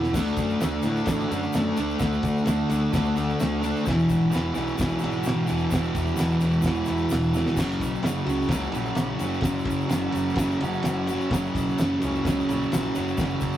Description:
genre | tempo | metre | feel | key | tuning
garage rock duo or trio | 129 BPM | 4/4 | straight | unclear | A4 = 440 Hz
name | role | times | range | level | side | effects
fuzz guitar | riff | 0.0-13.6 s | E2 to D4 | -24 LUFS | equal | distortion
growling picked electric bass | bass | 0.0-13.6 s | E1 to D3 | -31 LUFS | equal | overdrive
cloth-damped thuddy drum kit | drums | 0.0-13.5 s | crash cymbal, kick drum, ride cymbal, snare drum, splash cymbal | -29 LUFS | equal | none
egg shaker | percussion | 0.0-13.6 s | none | -46 LUFS | left 5 dB | none
room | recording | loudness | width
wet studio reverb, RT60 0.6 s | rough rehearsal-room recording, tube saturation | -22 LUFS | side -12 dB against mid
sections
0.1-13.6 A section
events
drum fill 7.3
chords
0.1 D; 3.9 E; 7.6 F#5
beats
| 0.14 0.61 1.07 1.54 | 2.01 2.47 2.94 3.40 | 3.87 4.33 4.79 5.26 | 5.72 6.19 6.65 7.12 | 7.58 8.05 8.51 8.98 | 9.44 9.91 10.38 10.84 | 11.31 11.78 12.24 12.71 | 13.18

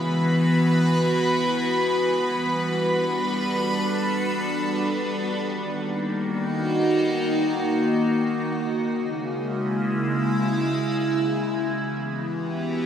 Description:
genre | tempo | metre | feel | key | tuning
ambient | free time | none | none | unclear | A4 = 440 Hz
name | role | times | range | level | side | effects
evolving wavetable pad | sustained chords | 0.0-12.9 s | C#3 to B4 | -22 LUFS | equal | phaser, built-in reverb, shimmer reverb
bowed-like drone | drone | 0.0-5.5 s | B3 to F#4 | -34 LUFS | equal | built-in reverb
clear studio violin section | texture | 0.0-5.5 s | B4 to B5 | -27 LUFS | right 1 dB | shimmer reverb
room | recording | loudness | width
wet huge ambient reverb, RT60 7.3 s | none | -21 LUFS | side -8 dB against mid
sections
0.0-5.4 A section; 5.4-12.9 B section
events
none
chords
0.0 Esus2; 2.2 Gadd9; 5.4 D#m; 8.6 C#m; 11.7 Emadd9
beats
free time

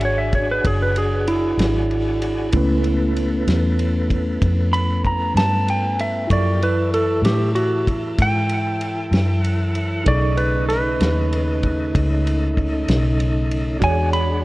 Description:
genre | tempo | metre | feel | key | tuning
slow blues | 64 BPM (dotted quarters) | 12/8 | straight | unclear | A4 = 444 Hz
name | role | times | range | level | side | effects
clean lap steel guitar | second line | 0.0-14.4 s | E4 to B5 | -22 LUFS | right 1 dB | digital delay
tine electric piano | accompaniment | 0.0-14.4 s | A3 to C#6 | -27 LUFS | right 2 dB | medium stereo tremolo
tonewheel organ | sustained chords | 0.0-14.4 s | C#3 to A4 | -26 LUFS | left 1 dB | slow rotary speaker, chorus vibrato
vintage muted fingered electric bass | bass | 0.0-14.4 s | F#1 to A2 | -21 LUFS | equal | none
warm soul drum kit | drums | 0.0-14.3 s | kick drum, ride cymbal, snare drum | -25 LUFS | equal | none
room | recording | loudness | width
little or no reverb | worn, warbling old tape, cassette tape, warbly pitch drift | -17 LUFS | side -19 dB against mid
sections
0.0-14.4 A section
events
electric slide guitar solo 0.0-14.4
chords
0.0 E13; 2.5 C#7alt; 6.3 F#m7; 10.1 B13; 13.8 E13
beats
0.64 1.59 | 2.53 3.48 4.42 5.36 | 6.30 7.25 8.19 9.13 | 10.07 11.00 11.94 12.88 | 13.81

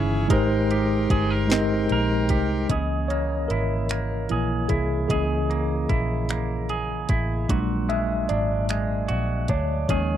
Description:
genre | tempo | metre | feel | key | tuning
slow six-eight R&B | 50 BPM (dotted quarters) | 6/8 | straight | unclear | A4 = 444 Hz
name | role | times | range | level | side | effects
clean electric guitar | second line | 0.0-10.2 s | Bb2 to Bb4 | -30 LUFS | right 5 dB | none
mellow tine electric piano | accompaniment | 0.0-10.2 s | Fb3 to Ab5 | -25 LUFS | left 1 dB | medium stereo tremolo
pipe organ, trumpet | sustained chords | 0.0-2.7 s | Ab4 to Db6 | -33 LUFS | left 2 dB | none
vintage muted fingered electric bass | bass | 0.0-10.2 s | G1 to Eb2 | -26 LUFS | equal | none
smooth R&B drum kit | drums | 0.3-10.1 s | finger snaps, hi-hat, kick drum, snare drum | -24 LUFS | equal | none
room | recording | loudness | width
little or no reverb | dry, close 1970s-style studio recording | -21 LUFS | side -10 dB against mid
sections
0.0-2.7 A section; 2.7-10.2 B section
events
tine electric piano solo 2.7-10.2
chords
0.3 Abmaj9; 2.7 Dbm6; 7.5 Bbaug7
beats
| 0.30 1.50 | 2.70 3.90 | 5.10 6.30 | 7.50 8.70 | 9.90

